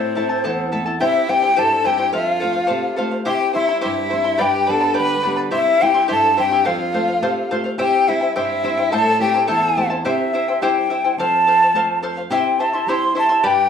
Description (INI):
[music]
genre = andean folk, Andean ensemble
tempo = 106 BPM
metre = 2/4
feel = straight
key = unclear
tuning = A4 = 440 Hz
[part]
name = breathy mellow quena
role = melody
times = 0.0-13.7 s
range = C5 to C6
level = -17 LUFS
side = left 2 dB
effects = none
[part]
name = bright violin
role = second line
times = 0.0-9.9, 13.5-13.7 s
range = C4 to B4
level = -26 LUFS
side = left 2 dB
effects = none
[part]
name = charango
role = accompaniment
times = 0.0-13.7 s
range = E4 to C6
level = -22 LUFS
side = left 1 dB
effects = none
[part]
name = flamenco guitar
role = accompaniment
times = 0.0-13.7 s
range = E2 to F4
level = -26 LUFS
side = equal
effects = none
[sound]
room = light reverb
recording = rough home demo mix, studio reverb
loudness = -16 LUFS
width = side -7 dB against mid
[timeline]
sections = 0.0-1.0 A section; 1.0-10.0 B section; 10.0-13.7 B section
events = none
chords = 0.0 Am; 1.0 C; 2.1 F; 3.3 C; 4.4 G; 5.5 C; 6.7 F; 7.8 C; 8.9 Am; 10.0 C; 11.2 F; 12.3 C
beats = 0.45 | 1.01 1.58 | 2.14 2.71 | 3.27 3.84 | 4.40 4.97 | 5.53 6.09 | 6.66 7.22 | 7.79 8.35 | 8.92 9.48 | 10.05 10.61 | 11.18 11.74 | 12.31 12.87 | 13.44